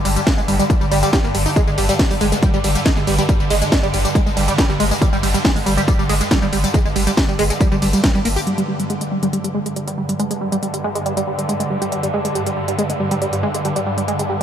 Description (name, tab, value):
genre	driving peak-time techno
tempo	139 BPM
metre	4/4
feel	straight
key	unclear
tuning	A4 = 440 Hz
part	saturated sub bass	bass	0.0-8.4 s	G1	-22 LUFS	equal	overdrive, sidechain pumping, low-pass filter
part	swarming drone	drone	0.0-14.4 s	G2 to D3	-23 LUFS	equal	built-in reverb, sidechain pumping
part	tight sequenced synth	riff	0.1-14.4 s	G3 to G4	-20 LUFS	right 1 dB	chorus, phaser, tube saturation, sidechain pumping, dub echo
part	breakbeat sampler-style drum kit	drums	0.1-14.4 s	hi-hat, snare drum, tambourine	-33 LUFS	left 1 dB	none
part	techno drum kit	drums	0.1-14.3 s	hi-hat, ride cymbal, snare drum, tambourine	-24 LUFS	equal	overdrive, sidechain pumping on hats, sidechain pumping on perc, sidechain pumping on cymbals
part	electronic kick drum	drums	0.3-8.1 s	none	-18 LUFS	equal	overdrive
room	light reverb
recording	none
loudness	-15 LUFS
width	side -9 dB against mid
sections	0.0-8.5 A section; 8.5-14.4 B section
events	drop 0.0-8.5; band accent 8.0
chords	0.0 G5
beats	0.27 0.70 1.13 | 1.56 1.99 2.43 2.86 | 3.29 3.72 4.15 4.58 | 5.02 5.45 5.88 6.31 | 6.74 7.17 7.61 8.04 | 8.47 8.90 9.33 9.76 | 10.20 10.63 11.06 11.49 | 11.92 12.35 12.79 13.22 | 13.65 14.08